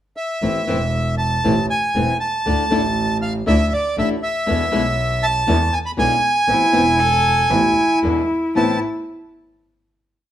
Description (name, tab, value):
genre	tango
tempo	118 BPM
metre	4/4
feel	rubato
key	A harmonic minor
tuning	A4 = 439 Hz
part	bandoneon	melody	0.2-8.8 s	D5 to B5	-19 LUFS	right 1 dB	none
part	flamenco guitar	accompaniment	0.4-8.8 s	A2 to E4	-22 LUFS	left 2 dB	none
part	clear double bass	bass	0.4-8.8 s	E1 to E2	-22 LUFS	right 1 dB	none
part	rich cello	second line	6.5-8.8 s	E4 to A4	-20 LUFS	left 1 dB	none
room	moderate stone room reverb, RT60 1.1 s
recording	band playing live in one room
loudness	-16 LUFS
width	side -11 dB against mid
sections	0.0-0.4 pickup bar; 0.4-8.6 A section; 8.6-10.3 final chord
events	none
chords	0.4 Am; 2.5 Dsus2; 4.5 E7; 6.5 Amadd9; 8.0 E7; 8.6 Amadd9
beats	| 0.42 0.94 1.45 1.96 | 2.46 2.97 3.47 3.98 | 4.48 4.98 5.48 5.98 | 6.49 6.99 7.51 8.03 | 8.55